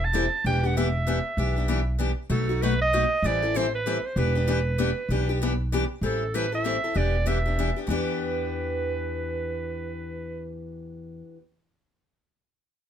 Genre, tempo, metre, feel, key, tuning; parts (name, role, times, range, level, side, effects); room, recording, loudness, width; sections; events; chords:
acoustic string swing (jazz manouche); 193 BPM; 3/4; swing 61% on 8ths; E minor; A4 = 443 Hz
bright clarinet; melody; 0.0-10.5 s; A4 to A5; -28 LUFS; right 3 dB; plate reverb
upright bass; bass; 0.0-11.2 s; E1 to E2; -28 LUFS; equal
picked steel-string acoustic guitar; accompaniment; 0.1-11.4 s; B2 to A4; -28 LUFS; left 3 dB
light reverb; close, detailed microphones; -23 LUFS; side -9 dB against mid
0.0-6.0 A section; 6.0-7.9 B section; 7.9-9.8 C section
0.4 Em7; 2.3 B7; 3.2 Am9; 4.2 Em7; 6.0 Am7; 7.0 Em7